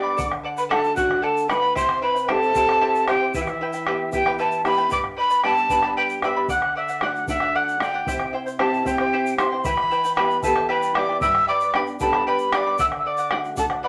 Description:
andean folk, Andean ensemble; 76 BPM (dotted quarters); 6/8; straight; A4 = 440 Hz
breathy bright quena; melody; 0.0-13.9 s; E5 to E6; -24 LUFS; equal
breathy mellow pan flute; second line; 0.0-4.4, 10.2-13.9 s; E4 to E5; -30 LUFS; equal
charango; accompaniment; 0.0-13.9 s; E4 to B5; -30 LUFS; equal
nylon-string guitar; accompaniment; 0.0-13.9 s; G2 to G4; -31 LUFS; equal
bombo; percussion; 0.2-13.8 s; -30 LUFS; equal
tube shaker; percussion; 0.2-13.7 s; -46 LUFS; equal
wet studio reverb, RT60 0.5 s; -21 LUFS; mono
0.0-4.9 A section; 4.9-13.9 A section
0.2 D; 1.8 C; 3.3 Em; 4.9 G; 6.5 D; 8.1 C; 9.6 Em; 11.2 G; 12.8 D

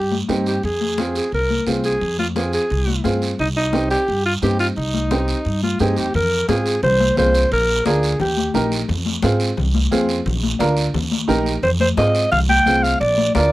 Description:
latin, cumbia; 175 BPM; 4/4; straight; F dorian; A4 = 440 Hz
growling alto saxophone; melody; 0.0-8.5, 11.6-13.5 s; Eb4 to G5; -19 LUFS; equal
upright bass; bass; 0.0-13.5 s; Bb1 to Ab2; -22 LUFS; equal
congas; percussion; 0.1-13.5 s; -24 LUFS; left 5 dB
warm upright piano; accompaniment; 0.3-13.5 s; C4 to Bb4; -22 LUFS; right 2 dB
guiro; percussion; 0.3-13.5 s; -29 LUFS; right 5 dB
light reverb; dry, close 1970s-style studio recording; -16 LUFS; side -17 dB against mid
0.0-6.1 A section; 6.1-13.5 B section
0.0 Cm; 0.6 Fm; 3.4 Cm; 6.1 Fm; 7.5 Bb; 8.2 Eb; 8.9 Fm; 10.3 Bb; 10.9 Eb; 11.6 Fmadd9; 13.0 Bb

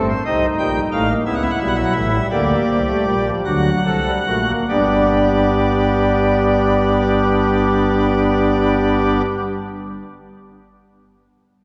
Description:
classical, baroque-style 4-part fugue for pipe organ; 47-61 BPM (dotted quarters); 6/8; straight; A4 = 439 Hz
pipe organ, cornet; solo; 0.0-9.2 s; G1 to G5; -17 LUFS; equal
wet church reverb, RT60 2.9 s; recorded in a church or concert hall; -17 LUFS; mono
0.0-4.7 A section; 4.7-9.8 B section
slowing down 0.0-4.7
0.3 Adim; 1.3 A7; 2.3 Gm; 3.5 D7; 4.7 G

